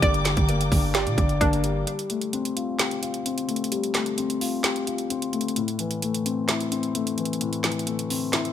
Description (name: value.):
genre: hip hop, trap.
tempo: 130 BPM.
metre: 4/4.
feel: half-time.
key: F major.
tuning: A4 = 440 Hz.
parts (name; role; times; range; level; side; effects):
dark baby grand piano; accompaniment; 0.0-8.5 s; A2 to D5; -26 LUFS; left 4 dB; low-pass filter.
dark chamber string section; sustained chords; 0.0-1.8 s; Bb4 to D6; -32 LUFS; left 2 dB; none.
warbly dusty pluck; arpeggios; 0.0-1.9 s; D4 to D5; -28 LUFS; right 2 dB; chorus, low-pass filter, digital delay.
growling 808-style bass; bass; 0.0-1.9 s; G1 to Bb2; -26 LUFS; right 1 dB; none.
trap drum kit; drums; 0.0-8.5 s; handclaps, hi-hat, kick drum, snare drum; -26 LUFS; right 1 dB; none.
room: light reverb.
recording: none.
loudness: -23 LUFS.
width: side -10 dB against mid.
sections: 0.0-1.9 A section; 1.9-8.5 B section.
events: break 1.9-8.5; filter sweep 1.9-8.5; kick muted 7.4-8.5.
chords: 0.0 Gm; 1.9 Fadd9; 5.6 Am.